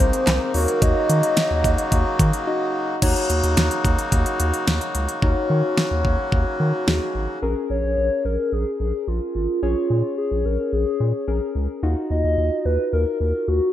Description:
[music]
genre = synth-pop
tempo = 109 BPM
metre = 4/4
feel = straight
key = Eb minor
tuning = A4 = 440 Hz
[part]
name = hollow clarinet-like synth lead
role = melody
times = 0.0-2.5, 7.7-13.7 s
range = F4 to Eb5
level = -23 LUFS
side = equal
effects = chorus
[part]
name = muted felt-like synth keys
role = accompaniment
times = 0.0-13.7 s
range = C4 to Eb5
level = -26 LUFS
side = left 2 dB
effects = chorus
[part]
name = accordion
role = sustained chords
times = 0.0-7.4 s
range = C3 to Gb4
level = -26 LUFS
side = left 1 dB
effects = none
[part]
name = round analog bass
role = bass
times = 0.0-13.6 s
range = Ab1 to Eb3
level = -22 LUFS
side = equal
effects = none
[part]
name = pop drum kit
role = drums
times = 0.1-7.0 s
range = crash cymbal, handclaps, hi-hat, kick drum, snare drum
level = -21 LUFS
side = equal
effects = none
[sound]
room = moderate plate reverb, RT60 1.5 s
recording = bright 1980s-style digital production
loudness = -19 LUFS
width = side -12 dB against mid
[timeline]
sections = 0.0-3.0 A section; 3.0-7.4 B section; 7.4-13.7 C section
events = break 2.5-3.0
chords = 0.0 Abadd9/C; 0.5 Ebm7; 7.4 Bbm7; 11.8 Ebmadd9

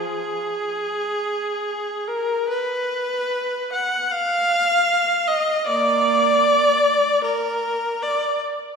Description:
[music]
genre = classical, free, expressive piece for unaccompanied viola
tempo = free time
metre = none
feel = none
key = unclear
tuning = A4 = 440 Hz
[part]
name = rich viola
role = solo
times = 0.0-8.4 s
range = F3 to Gb5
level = -19 LUFS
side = equal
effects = none
[sound]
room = wet scoring stage reverb, RT60 1.9 s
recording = recorded in a church or concert hall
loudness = -19 LUFS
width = side -5 dB against mid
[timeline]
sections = 0.0-8.8 A section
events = none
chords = none

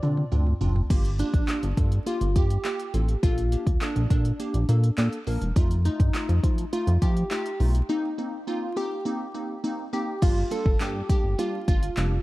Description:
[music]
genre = dance-pop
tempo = 103 BPM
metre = 4/4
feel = straight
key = G minor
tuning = A4 = 440 Hz
[part]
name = glassy wavetable pluck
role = melody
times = 0.0-12.2 s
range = D4 to D5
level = -30 LUFS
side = equal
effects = chorus, slapback echo
[part]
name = wavetable chord stab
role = accompaniment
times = 0.0-12.2 s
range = G3 to Bb4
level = -33 LUFS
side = right 1 dB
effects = sidechain pumping
[part]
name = chorused synth bass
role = bass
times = 0.0-12.2 s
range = E1 to F3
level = -23 LUFS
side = equal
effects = sidechain pumping
[part]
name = deep house drum kit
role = drums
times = 0.0-12.1 s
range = crash cymbal, handclaps, hi-hat, kick drum, toms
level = -25 LUFS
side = equal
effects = none
[sound]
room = digital ambience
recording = dark, warm production, vinyl crackle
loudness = -22 LUFS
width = side -18 dB against mid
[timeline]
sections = 0.9-10.2 A section; 10.2-12.2 B section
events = drum fill 0.0-0.9; break 7.9-10.2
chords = 0.0 Dm7; 0.9 Gm7; 3.2 Bbmaj7; 5.6 F7; 7.9 Cm7; 10.2 Gm7

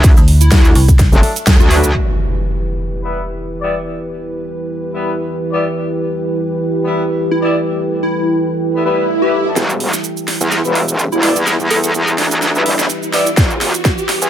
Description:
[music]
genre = bass house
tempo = 126 BPM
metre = 4/4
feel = swing 55% on 16ths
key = E minor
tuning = A4 = 440 Hz
[part]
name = dark analog pad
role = sustained chords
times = 0.0-14.3 s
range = E3 to B4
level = -23 LUFS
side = right 1 dB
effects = chorus, sidechain pumping
[part]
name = metallic wobble bass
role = bass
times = 0.0-1.9, 9.6-14.3 s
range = E1 to E2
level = -14 LUFS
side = equal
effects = chorus, tube saturation, sidechain pumping, high-pass filter
[part]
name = big-room dance drum kit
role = drums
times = 0.0-1.9, 9.6-14.3 s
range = hi-hat, ride cymbal, shaker, snare drum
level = -18 LUFS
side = right 2 dB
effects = high-pass filter on hats, low-pass filter on hats, high-pass filter on cymbals, low-pass filter on cymbals, high-pass filter on perc, low-pass filter on perc, high-pass filter on snare, low-pass filter on snare, high-pass filter on room, low-pass filter on room
[part]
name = electronic kick drum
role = drums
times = 0.0-1.6, 13.4-14.0 s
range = none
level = -10 LUFS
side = equal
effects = none
[part]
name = metallic FM bass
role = bass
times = 0.2-1.1 s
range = C2 to D2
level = -10 LUFS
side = equal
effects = overdrive, sidechain pumping
[part]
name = plucky unison lead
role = melody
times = 0.4-1.9, 7.3-11.9 s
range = E4 to A4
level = -20 LUFS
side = equal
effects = digital delay
[part]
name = mellow horn section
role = stabs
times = 1.1-13.3 s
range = F#3 to D5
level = -21 LUFS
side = left 2 dB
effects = sidechain pumping, low-pass filter, digital delay
[part]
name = impact, swell and riser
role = sound effects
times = 1.9-3.9, 8.8-14.3 s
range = none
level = -22 LUFS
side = right 1 dB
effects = none
[part]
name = deep dark ambient pad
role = texture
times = 4.0-14.3 s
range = E4 to G5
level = -22 LUFS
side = right 1 dB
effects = chorus, built-in reverb, sidechain pumping
[sound]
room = light reverb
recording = high-pass filter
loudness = -12 LUFS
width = side -10 dB against mid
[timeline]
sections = 0.0-1.9 A section; 1.9-9.6 B section; 9.6-14.3 C section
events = drop 0.0-1.9; band accent 1.5; impact 1.9-3.9; swell 8.8-9.6; build-up 9.6-14.3; drum fill 9.6-14.3; riser 9.6-14.3; filter sweep on horn section 9.6-14.3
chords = 0.0 D; 1.9 Em

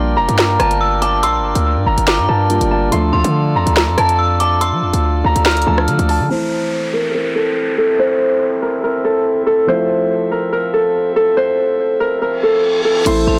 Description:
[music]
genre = hip hop, drill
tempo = 142 BPM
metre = 4/4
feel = half-time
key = A phrygian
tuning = A4 = 442 Hz
[part]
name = Celtic harp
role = melody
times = 0.0-13.4 s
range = A4 to C6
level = -18 LUFS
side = equal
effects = low-pass filter, digital delay
[part]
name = metallic FM bell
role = second line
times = 0.0-6.3, 13.3-13.4 s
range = A5 to F6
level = -23 LUFS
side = equal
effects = chorus, digital delay
[part]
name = dark concert grand piano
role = accompaniment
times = 0.0-13.4 s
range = E3 to F4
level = -26 LUFS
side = equal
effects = low-pass filter
[part]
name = hand-pumped harmonium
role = sustained chords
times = 0.0-13.4 s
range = F3 to A5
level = -26 LUFS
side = equal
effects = low-pass filter
[part]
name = hard-hitting 808-style bass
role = bass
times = 0.0-6.3, 13.1-13.4 s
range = F1 to F3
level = -20 LUFS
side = equal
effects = none
[part]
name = drill drum kit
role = drums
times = 0.3-6.2, 13.1-13.2 s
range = crash cymbal, hi-hat, rim click, snare drum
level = -20 LUFS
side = equal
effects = none
[part]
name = downlifter and reverse cymbal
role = sound effects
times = 6.3-13.1 s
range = none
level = -29 LUFS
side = equal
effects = none
[sound]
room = light reverb, studio reverb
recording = blown-out, overdriven recording, overdrive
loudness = -15 LUFS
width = mono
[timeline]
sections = 0.0-6.3 A section; 6.3-13.1 B section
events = filter sweep 6.3-13.1; reverse cymbal 12.3-13.1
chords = 0.0 Gm7; 2.9 Dm; 6.3 Am; 9.7 Fmaj7

